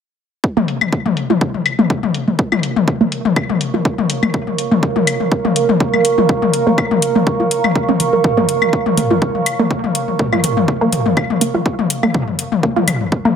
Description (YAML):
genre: minimal techno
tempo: 123 BPM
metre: 4/4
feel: swing 54% on 16ths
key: Bb minor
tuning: A4 = 440 Hz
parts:
  - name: electronic kick drum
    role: drums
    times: 0.4-13.2 s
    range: none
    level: -17 LUFS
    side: equal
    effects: overdrive, high-pass filter on kick
  - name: deep dark ambient pad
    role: texture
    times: 2.7-13.4 s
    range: Bb4 to Db6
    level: -19 LUFS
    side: right 6 dB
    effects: chorus, built-in reverb, sidechain pumping
  - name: resonant blip pluck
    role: riff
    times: 0.6-13.3 s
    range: F3 to Bb4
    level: -18 LUFS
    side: right 3 dB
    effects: chorus, vintage 12-bit sampler grit, sidechain pumping, dub echo
  - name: electronic toms and claves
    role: percussion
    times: 0.6-13.3 s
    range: none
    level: -17 LUFS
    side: left 6 dB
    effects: none
  - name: electronic hi-hat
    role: drums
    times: 0.7-13.0 s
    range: none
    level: -22 LUFS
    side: left 3 dB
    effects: low-pass filter on hats, low-pass filter on room
room: light reverb, digital ambience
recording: none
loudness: -13 LUFS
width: side -7 dB against mid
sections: 0.4-13.4 A section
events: filter sweep on synth arpeggio sound 0.4-13.4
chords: 0.4 Bbm